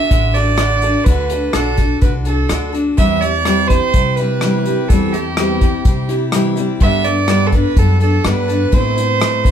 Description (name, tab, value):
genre	honky-tonk and classic country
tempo	125 BPM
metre	4/4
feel	straight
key	unclear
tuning	A4 = 436 Hz
part	clear fiddle	second line	0.0-9.5 s	G4 to E5	-18 LUFS	right 6 dB	none
part	picked steel-string acoustic guitar	accompaniment	0.0-9.5 s	E2 to B4	-18 LUFS	left 2 dB	none
part	upright bass	bass	0.1-9.5 s	A1 to C3	-19 LUFS	equal	none
part	unplugged drum kit	drums	0.1-9.5 s	hi-hat, kick drum, rim click	-16 LUFS	equal	none
room	wet studio reverb, RT60 0.5 s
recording	heard from further back in the room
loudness	-12 LUFS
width	side -9 dB against mid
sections	0.0-9.5 A section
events	fiddle solo 0.0-9.5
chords	0.0 D; 3.0 C/E; 6.8 Gadd9; 8.7 Amadd9